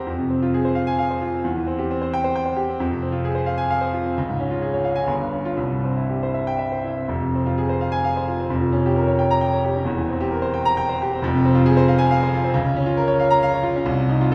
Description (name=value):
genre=classical, virtuoso piano study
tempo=118-137 BPM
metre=3/4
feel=rubato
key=F minor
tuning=A4 = 440 Hz
part: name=clear grand piano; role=solo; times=0.0-14.3 s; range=E1 to Bb5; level=-21 LUFS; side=equal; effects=none
room=wet recital hall reverb, RT60 1.6 s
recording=heard from further back in the room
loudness=-21 LUFS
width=mono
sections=0.0-7.1 A section; 7.1-14.3 A section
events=none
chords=0.1 Fm; 1.4 C/E; 2.8 Fm; 4.2 Db; 5.1 Fsus2/G; 5.6 C; 7.1 Fm; 8.5 Gm7b5/F; 9.9 C7/E; 11.2 Fm; 12.6 Bbm/Db